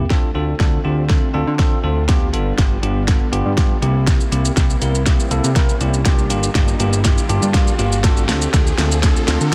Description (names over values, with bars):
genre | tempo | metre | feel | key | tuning
dance-pop | 121 BPM | 4/4 | straight | D minor | A4 = 444 Hz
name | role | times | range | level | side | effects
bell-like tine electric piano | accompaniment | 0.0-9.5 s | Bb3 to A5 | -25 LUFS | equal | sidechain pumping
fat analog bass | bass | 0.0-9.5 s | G1 to D3 | -22 LUFS | equal | sidechain pumping
soft supersaw | sustained chords | 0.1-9.5 s | C3 to F4 | -31 LUFS | equal | none
pop drum kit | drums | 0.1-9.5 s | hi-hat, kick drum, shaker, snare drum | -19 LUFS | equal | soft clipping on snare
riser | sound effects | 4.2-9.5 s | none | -34 LUFS | equal | none
room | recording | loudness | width
light reverb | dense, heavily limited modern master | -17 LUFS | mono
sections
0.1-9.5 A section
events
build-up 0.1-9.5; drum fill 0.1-9.5; riser 4.2-9.5; tine electric piano fill 7.0-8.0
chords
0.1 Dm7; 2.1 G7; 3.8 C7; 6.1 Gm7; 8.0 Dm7